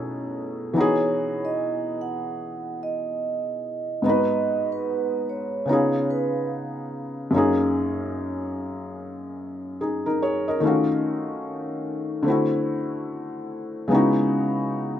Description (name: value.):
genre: hip hop.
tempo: 73 BPM.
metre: 4/4.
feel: swing 63% on 16ths.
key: C# minor.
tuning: A4 = 440 Hz.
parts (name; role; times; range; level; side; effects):
felt-muted upright piano; accompaniment; 0.0-15.0 s; F#2 to D#5; -23 LUFS; left 1 dB; none.
vibraphone with soft mallets; melody; 0.8-6.5 s; B4 to F#5; -27 LUFS; right 4 dB; none.
room: wet studio ambience, RT60 0.5 s.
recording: rough home demo mix.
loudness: -22 LUFS.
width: side -10 dB against mid.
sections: 0.0-15.0 A section.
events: none.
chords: 0.0 B13; 0.8 Emaj9; 4.0 G#m7; 5.7 C#9; 7.3 F#6; 10.6 D#m7b5; 12.3 D9; 13.9 C#m11.